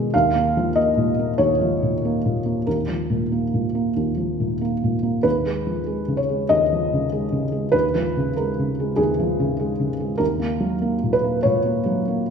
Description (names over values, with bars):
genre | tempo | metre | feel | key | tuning
neoclassical minimalist piano | 96 BPM | 4/4 | rubato | unclear | A4 = 439 Hz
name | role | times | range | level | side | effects
felt-muted upright piano | solo | 0.0-12.3 s | Eb2 to F5 | -19 LUFS | equal | none
room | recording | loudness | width
wet recital hall reverb, RT60 1.3 s | recorded in a church or concert hall | -19 LUFS | side -6 dB against mid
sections
0.0-12.3 A section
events
none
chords
0.1 Bbm/Eb; 5.2 Db/Eb; 10.2 Ebm